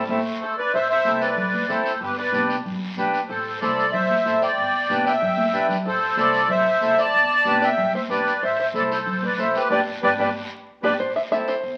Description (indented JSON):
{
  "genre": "latin, cumbia",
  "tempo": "187 BPM",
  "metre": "4/4",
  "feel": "straight",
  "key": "A minor",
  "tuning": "A4 = 440 Hz",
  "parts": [
    { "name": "accordion", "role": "melody", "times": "0.0-10.9 s", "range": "G3 to A5", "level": "-23 LUFS", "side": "equal", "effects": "light tremolo tuning" },
    { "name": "accordion", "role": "accompaniment", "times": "0.0-11.5 s", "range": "C4 to C5", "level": "-28 LUFS", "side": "equal", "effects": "none" },
    { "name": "upright bass", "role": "bass", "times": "0.0-11.8 s", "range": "G1 to E2", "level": "-41 LUFS", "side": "equal", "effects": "none" },
    { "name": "congas", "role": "percussion", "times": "0.1-11.5 s", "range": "none", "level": "-33 LUFS", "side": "equal", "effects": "none" },
    { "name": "guiro", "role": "percussion", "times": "0.1-11.8 s", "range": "none", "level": "-41 LUFS", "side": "equal", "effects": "none" },
    { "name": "open-back banjo", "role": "second line", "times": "0.4-11.8 s", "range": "G4 to E5", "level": "-32 LUFS", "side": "equal", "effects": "none" }
  ],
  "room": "wet club reverb, RT60 0.9 s",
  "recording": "very old 78 rpm record, vinyl crackle",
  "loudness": "-21 LUFS",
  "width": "mono",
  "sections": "0.7-11.0 A section",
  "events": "band accent 0.0-0.7, 9.7-11.0; drum fill 5.4-5.9, 10.0-11.0",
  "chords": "0.0 Am; 2.0 G; 3.3 Am; 4.6 G; 5.9 Am; 7.1 G; 8.4 Am; 9.7 G; 11.0 Am",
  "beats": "0.09 0.41 | 0.73 1.05 1.38 1.70 | 2.02 2.33 2.65 2.98 | 3.30 3.62 3.94 4.26 | 4.58 4.90 5.22 5.54 | 5.86 6.18 6.50 6.82 | 7.14 7.46 7.79 8.11 | 8.43 8.75 9.07 9.39 | 9.71 10.03 10.35 10.68 | 11.00 11.32 11.64"
}